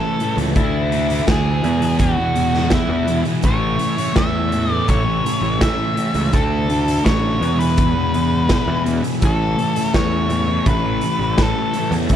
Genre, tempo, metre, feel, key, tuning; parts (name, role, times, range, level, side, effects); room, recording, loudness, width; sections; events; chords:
psychedelic rock; 83 BPM; 4/4; straight; A major; A4 = 440 Hz
octave-fuzz lead guitar; melody; 0.0-12.2 s; E4 to E5; -23 LUFS; left 1 dB; distortion, slapback echo
bright tonewheel organ; sustained chords; 0.0-12.2 s; A3 to A4; -31 LUFS; right 7 dB; slow rotary speaker, overdrive, chorus vibrato
thick fuzz guitar; riff; 0.0-12.2 s; E2 to D4; -21 LUFS; left 1 dB; distortion, phaser
raw garage drum kit; drums; 0.2-12.2 s; hi-hat, kick drum, snare drum; -21 LUFS; equal
fuzz picked electric bass; bass; 0.4-12.2 s; A1 to E2; -22 LUFS; equal; overdrive
studio reverb; -16 LUFS; side -10 dB against mid
0.0-12.2 A section
0.0 A; 0.6 Dsus2; 1.6 E; 3.4 A; 6.3 Dsus2; 7.4 E; 9.2 A